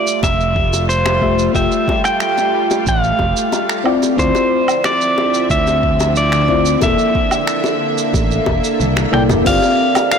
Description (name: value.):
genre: sunset chillout.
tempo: 91 BPM.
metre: 4/4.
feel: straight.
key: F major.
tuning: A4 = 440 Hz.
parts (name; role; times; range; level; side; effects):
pedal steel guitar; melody; 0.0-10.2 s; C5 to G5; -17 LUFS; equal; vintage 12-bit sampler grit, ping-pong delay.
mellow FM electric piano; accompaniment; 0.0-10.2 s; A3 to G5; -19 LUFS; moving between left 7 dB and right 7 dB; chorus, auto-pan.
shimmering ambient pad; sustained chords; 0.0-10.2 s; D3 to E5; -22 LUFS; right 1 dB; chorus, built-in reverb.
deep house drum kit; drums; 0.1-10.2 s; crash cymbal, finger snaps, hi-hat, shaker, toms, woodblock; -23 LUFS; right 3 dB; soft clipping on snare.
fingered electric bass; bass; 0.2-9.6 s; E1 to D2; -19 LUFS; right 1 dB; transformer saturation.
electronic kick drum; drums; 0.2-9.6 s; none; -21 LUFS; right 1 dB; none.
bongos; percussion; 0.2-10.1 s; none; -25 LUFS; left 4 dB; none.
room: moderate lush hall reverb, RT60 2.5 s.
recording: blown-out, overdriven recording, overdrive.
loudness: -13 LUFS.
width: side -6 dB against mid.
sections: 0.0-9.5 A section.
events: kick drops out 8.8-9.5; drum fill 8.8-9.5.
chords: 0.0 Fmaj9; 3.9 Dm9; 6.8 C13/E; 9.5 G7sus4.